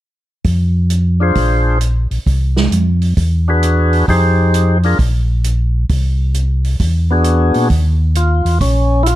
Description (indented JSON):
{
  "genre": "soul jazz organ trio",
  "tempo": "132 BPM",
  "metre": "4/4",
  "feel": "swing 66% on 8ths",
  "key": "unclear",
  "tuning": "A4 = 441 Hz",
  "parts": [
    { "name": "mellow tonewheel organ", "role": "bass", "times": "0.4-9.2 s", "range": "Bb1 to Bb2", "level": "-13 LUFS", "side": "equal", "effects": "overdrive, chorus vibrato, slow rotary speaker" },
    { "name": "open jazz drum kit", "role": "drums", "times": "0.4-9.2 s", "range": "hi-hat, kick drum, snare drum", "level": "-19 LUFS", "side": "right 2 dB", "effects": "none" },
    { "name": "percussive tonewheel organ", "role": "melody", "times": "1.2-9.2 s", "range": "B3 to C5", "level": "-16 LUFS", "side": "left 1 dB", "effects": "slow rotary speaker" }
  ],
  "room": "light reverb",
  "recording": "dark, warm production",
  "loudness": "-12 LUFS",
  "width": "side -14 dB against mid",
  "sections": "0.5-7.7 A section; 7.7-9.2 B section",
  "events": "none",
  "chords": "0.5 Fm; 1.4 Bb7; 2.3 Csus4; 3.2 E7; 4.1 Fm7; 5.0 N.C.; 6.8 E7; 7.7 Ebsus2"
}